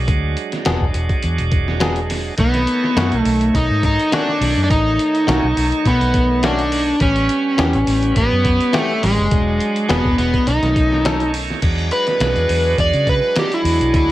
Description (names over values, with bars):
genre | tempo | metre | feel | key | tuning
straight-eighth soul blues | 104 BPM | 4/4 | straight | unclear | A4 = 440 Hz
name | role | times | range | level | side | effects
bright tonewheel organ | accompaniment | 0.0-14.1 s | D#3 to C#5 | -25 LUFS | right 6 dB | overdrive, slow rotary speaker
vintage muted fingered electric bass | bass | 0.0-14.1 s | E1 to C#3 | -20 LUFS | equal | none
lo-fi sampler-style drum kit | drums | 0.1-14.1 s | crash cymbal, hi-hat, kick drum, snare drum | -21 LUFS | equal | none
direct-recorded clean electric guitar | stabs | 0.7-11.2 s | D#3 to A4 | -24 LUFS | left 4 dB | spring reverb
overdriven slide guitar | melody | 2.4-14.1 s | G#3 to D5 | -17 LUFS | equal | none
room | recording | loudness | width
light reverb | none | -14 LUFS | side -15 dB against mid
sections
0.0-11.6 A section; 11.6-14.1 B section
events
electric slide guitar solo 11.6-14.1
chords
0.0 E9; 2.4 B9; 7.0 A9; 9.3 E9; 10.5 B9; 11.6 E9